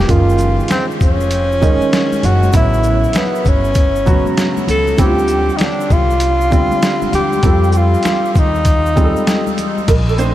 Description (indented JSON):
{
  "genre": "hip hop, jazz-hop",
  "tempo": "98 BPM",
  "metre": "4/4",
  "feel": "swing 65% on 16ths",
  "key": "unclear",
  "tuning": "A4 = 439 Hz",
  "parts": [
    { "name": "breathy tenor saxophone", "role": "melody", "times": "0.0-9.6 s", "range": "Cb4 to A4", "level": "-17 LUFS", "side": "left 1 dB", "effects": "analog delay" },
    { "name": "upright bass", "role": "bass", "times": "0.0-10.3 s", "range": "F1 to F2", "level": "-17 LUFS", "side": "equal", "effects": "none" },
    { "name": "warm grand piano", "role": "accompaniment", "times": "0.1-10.3 s", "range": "Cb3 to C5", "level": "-19 LUFS", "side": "right 3 dB", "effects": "lush chorus" },
    { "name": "boom bap sampler-style drum kit", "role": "drums", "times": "0.1-10.3 s", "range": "crash cymbal, hi-hat, kick drum, shaker, snare drum", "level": "-17 LUFS", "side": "equal", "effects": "none" },
    { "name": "egg shaker and congas", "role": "percussion", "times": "0.1-10.3 s", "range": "none", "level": "-29 LUFS", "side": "left 6 dB", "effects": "none" }
  ],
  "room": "moderate huge ambient reverb, RT60 7.0 s",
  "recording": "dreamy mix soaked in reverb",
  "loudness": "-11 LUFS",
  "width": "side -13 dB against mid",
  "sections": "0.0-9.9 A section",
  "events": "none",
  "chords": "0.1 Gb5; 2.5 A7; 5.0 Dm7; 7.4 F7",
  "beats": "| 0.09 0.70 1.31 1.93 | 2.54 3.15 3.76 4.38 | 4.99 5.60 6.21 6.83 | 7.44 8.05 8.66 9.27 | 9.89"
}